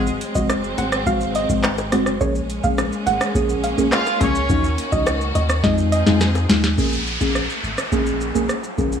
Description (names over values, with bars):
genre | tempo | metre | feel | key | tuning
dancehall | 105 BPM | 4/4 | straight | Bb minor | A4 = 440 Hz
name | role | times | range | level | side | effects
clear horn section | second line | 0.0-0.2, 3.9-4.8 s | Ab3 to F5 | -25 LUFS | right 1 dB | tape echo
deep mellow chord stab | accompaniment | 0.0-9.0 s | Ab3 to Ab4 | -22 LUFS | left 1 dB | chorus, sidechain pumping
warm studio string section | sustained chords | 0.0-6.8 s | Eb3 to Ab4 | -27 LUFS | equal | sidechain pumping
punchy sub bass | bass | 0.0-9.0 s | Gb1 to F2 | -24 LUFS | equal | none
booming analog drum machine | drums | 0.1-9.0 s | handclaps, hi-hat, kick drum, rim click, shaker, snare drum | -22 LUFS | equal | none
soft round pluck | melody | 0.4-6.0 s | Db5 to Gb5 | -25 LUFS | right 4 dB | chorus, tape echo
bongos | percussion | 0.5-6.6 s | none | -29 LUFS | left 6 dB | none
downlifter | sound effects | 6.8-9.0 s | none | -26 LUFS | equal | none
room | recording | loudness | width
light reverb, digital ambience | small room ambience | -17 LUFS | side -8 dB against mid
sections
0.0-6.8 A section; 6.8-9.0 B section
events
drum fill 5.6-6.8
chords
0.0 Ab7; 2.2 Bbm7; 4.5 Ebm7; 5.6 Fm7; 6.8 Bbm7